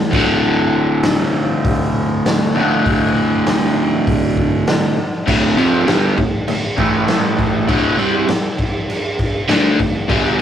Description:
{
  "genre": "garage rock duo or trio",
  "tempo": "99 BPM",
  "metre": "4/4",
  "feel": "straight",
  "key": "unclear",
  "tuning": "A4 = 441 Hz",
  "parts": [
    { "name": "crunchy overdriven guitar", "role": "riff", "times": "0.0-10.4 s", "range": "D2 to D4", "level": "-15 LUFS", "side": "equal", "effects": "phaser" },
    { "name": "raw garage drum kit", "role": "drums", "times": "0.1-10.2 s", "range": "crash cymbal, hi-hat, kick drum, snare drum", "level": "-18 LUFS", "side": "equal", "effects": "none" }
  ],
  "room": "moderate small room reverb, RT60 0.5 s",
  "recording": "rough rehearsal-room recording",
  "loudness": "-14 LUFS",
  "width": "side -9 dB against mid",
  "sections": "0.0-5.3 A section; 5.3-10.4 B section",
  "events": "none",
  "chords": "0.1 D5; 6.8 A5; 7.7 D5"
}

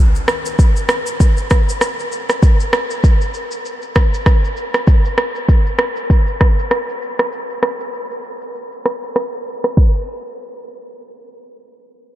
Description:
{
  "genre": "afrobeats",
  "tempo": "98 BPM",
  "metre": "4/4",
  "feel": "swing 58% on 16ths",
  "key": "none",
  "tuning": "none",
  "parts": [
    { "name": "afro-pop drum kit", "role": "drums", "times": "0.2-9.9 s", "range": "crash cymbal, kick drum, rim click, shaker", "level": "-14 LUFS", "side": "equal", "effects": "none" }
  ],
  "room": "light reverb",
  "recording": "low-pass filter",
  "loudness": "-14 LUFS",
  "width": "side -13 dB against mid",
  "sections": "0.0-9.8 A section; 9.8-12.2 B section",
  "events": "filter sweep 0.0-9.8",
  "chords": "none"
}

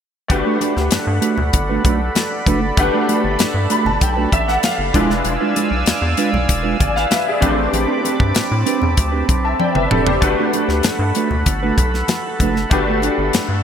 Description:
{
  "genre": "polished 1980s jazz-funk pop",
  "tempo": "97 BPM",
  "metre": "4/4",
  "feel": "straight",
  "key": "G major",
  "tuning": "A4 = 440 Hz",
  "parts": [
    { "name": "bright grand piano", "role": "accompaniment", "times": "0.3-13.6 s", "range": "G#3 to B5", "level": "-20 LUFS", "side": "left 2 dB", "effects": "ensemble chorus" },
    { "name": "chorused pulse-width pad", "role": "sustained chords", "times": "0.3-13.6 s", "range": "C4 to E6", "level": "-23 LUFS", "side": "right 2 dB", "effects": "none" },
    { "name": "mellow electric guitar", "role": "riff", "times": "0.3-13.5 s", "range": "G#3 to B4", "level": "-22 LUFS", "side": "right 5 dB", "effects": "analog chorus" },
    { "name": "rubbery square bass", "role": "bass", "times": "0.3-13.6 s", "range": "E1 to A2", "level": "-21 LUFS", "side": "equal", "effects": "none" },
    { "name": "tight funk drum kit", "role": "drums", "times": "0.3-13.5 s", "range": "hi-hat, kick drum, snare drum, toms", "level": "-19 LUFS", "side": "left 1 dB", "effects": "none" },
    { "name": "congas", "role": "percussion", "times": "0.3-13.5 s", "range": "none", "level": "-32 LUFS", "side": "left 3 dB", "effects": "none" }
  ],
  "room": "moderate plate reverb, RT60 3.2 s",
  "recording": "bright 1980s-style digital production",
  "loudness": "-15 LUFS",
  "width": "side -8 dB against mid",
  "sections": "0.3-13.6 A section",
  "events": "grand piano fill 3.4-5.3, 13.3; drum fill 9.6-10.2",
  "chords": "0.3 Gmaj9; 4.9 E7b9; 7.4 Am11; 10.2 Gmaj9"
}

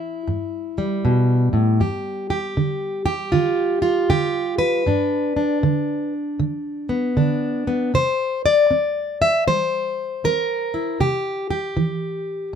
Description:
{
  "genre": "acoustic country blues, solo or duo",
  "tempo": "78 BPM",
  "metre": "4/4",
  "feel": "swing 64% on 8ths",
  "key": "G mixolydian",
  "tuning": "A4 = 440 Hz",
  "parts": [
    { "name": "fingerpicked plugged-in steel-string acoustic guitar", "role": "solo", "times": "0.0-12.6 s", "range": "G2 to E5", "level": "-19 LUFS", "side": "equal", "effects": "none" }
  ],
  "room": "light reverb",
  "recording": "close, detailed microphones",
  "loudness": "-19 LUFS",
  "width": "side -8 dB against mid",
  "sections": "0.0-12.6 A section",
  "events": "none",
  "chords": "0.0 C (rootless); 1.8 G; 7.9 C"
}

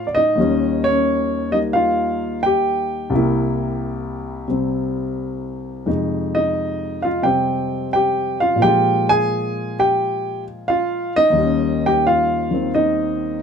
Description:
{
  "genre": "solo jazz",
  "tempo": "87 BPM",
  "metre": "4/4",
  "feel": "swing 69% on 8ths",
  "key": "Eb mixolydian",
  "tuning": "A4 = 440 Hz",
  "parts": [
    { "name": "warm grand piano", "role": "solo", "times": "0.0-13.4 s", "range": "C2 to Ab5", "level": "-17 LUFS", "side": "equal", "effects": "none" }
  ],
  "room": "light reverb",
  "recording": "none",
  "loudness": "-17 LUFS",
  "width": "side -7 dB against mid",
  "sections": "0.0-13.4 A section",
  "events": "none",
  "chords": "0.4 Eb7; 3.1 C7; 5.9 Fm7; 8.6 Bb5; 11.4 Eb7"
}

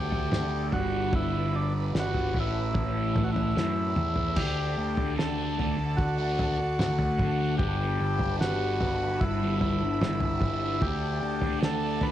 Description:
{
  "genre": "psychedelic rock",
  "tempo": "74 BPM",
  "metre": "4/4",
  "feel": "straight",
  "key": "unclear",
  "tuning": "A4 = 442 Hz",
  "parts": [
    { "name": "combo organ", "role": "melody", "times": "0.0-12.1 s", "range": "D4 to B4", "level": "-30 LUFS", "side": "equal", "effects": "spring reverb, slapback echo" },
    { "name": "rich studio string section", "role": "sustained chords", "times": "0.0-12.1 s", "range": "A4 to B5", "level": "-41 LUFS", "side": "right 5 dB", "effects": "none" },
    { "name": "fuzz guitar", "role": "riff", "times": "0.0-12.1 s", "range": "G2 to D4", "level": "-31 LUFS", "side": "left 1 dB", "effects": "distortion, phaser" },
    { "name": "fuzz picked electric bass", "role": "bass", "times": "0.0-12.1 s", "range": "G1 to F#2", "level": "-31 LUFS", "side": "equal", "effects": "overdrive" },
    { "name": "cloth-damped thuddy drum kit", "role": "drums", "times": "0.1-12.1 s", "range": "crash cymbal, kick drum, snare drum, toms", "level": "-30 LUFS", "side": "equal", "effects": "none" }
  ],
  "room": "light reverb, studio ambience",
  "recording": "none",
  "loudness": "-25 LUFS",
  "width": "side -12 dB against mid",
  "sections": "0.0-4.4 A section; 4.4-12.1 B section",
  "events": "drum fill 3.6-4.4",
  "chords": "0.0 D; 0.7 G; 2.3 Aadd9; 4.4 D; 7.6 Gadd9; 10.8 D"
}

